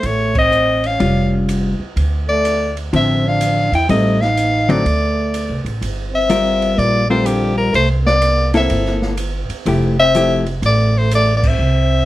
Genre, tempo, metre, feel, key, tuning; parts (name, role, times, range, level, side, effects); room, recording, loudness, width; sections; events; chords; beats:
jazz, small-group swing and bop; 124 BPM; 4/4; swing 66% on 8ths; F major; A4 = 441 Hz
clear soprano saxophone; melody; 0.0-12.1 s; G4 to G5; -17 LUFS; left 2 dB
growling trombone; second line; 0.0-12.1 s; D3 to E4; -22 LUFS; right 3 dB
upright bass; bass; 0.0-12.1 s; E#1 to E2; -18 LUFS; right 1 dB
open jazz drum kit; drums; 0.0-11.5 s; crash cymbal, hi-hat, kick drum, ride cymbal, snare drum; -26 LUFS; right 1 dB
hollow-body jazz guitar; accompaniment; 1.0-10.4 s; D3 to Bb4; -18 LUFS; left 2 dB
moderate club reverb, RT60 0.5 s; -13 LUFS; side -15 dB against mid
0.0-12.1 A section
band accent 0.3, 11.4
0.0 A7alt; 2.0 Dm9; 3.9 Am7b5; 4.8 D5; 5.8 Gm7; 7.7 C13; 9.7 Fmaj9
| 0.04 0.52 1.00 1.48 | 1.96 2.44 2.92 3.40 | 3.89 4.37 4.85 5.33 | 5.81 6.29 6.78 7.26 | 7.74 8.22 8.71 9.19 | 9.67 10.15 10.63 11.12 | 11.60